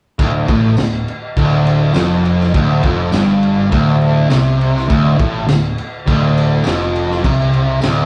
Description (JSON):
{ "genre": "garage rock duo or trio", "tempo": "102 BPM", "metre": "4/4", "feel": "straight", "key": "unclear", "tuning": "A4 = 442 Hz", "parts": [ { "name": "fuzz guitar", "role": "riff", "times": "0.2-8.1 s", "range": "D2 to C3", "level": "-16 LUFS", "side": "equal", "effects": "distortion" }, { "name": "fuzz picked electric bass", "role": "bass", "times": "0.2-8.1 s", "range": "D1 to C2", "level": "-24 LUFS", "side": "equal", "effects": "overdrive" }, { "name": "raw garage drum kit", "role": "drums", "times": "0.2-8.0 s", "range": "crash cymbal, kick drum, snare drum", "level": "-22 LUFS", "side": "equal", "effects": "none" }, { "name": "tambourine", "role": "percussion", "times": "0.8-8.0 s", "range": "none", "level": "-37 LUFS", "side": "equal", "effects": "none" } ], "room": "wet large studio reverb, RT60 0.9 s", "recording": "band playing live in one room, cassette tape", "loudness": "-14 LUFS", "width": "mono", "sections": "0.2-8.1 A section", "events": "none", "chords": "0.2 D5", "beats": "| 0.19 0.78 1.37 1.96 | 2.54 3.13 3.72 4.30 | 4.89 5.48 6.06 6.65 | 7.24 7.83" }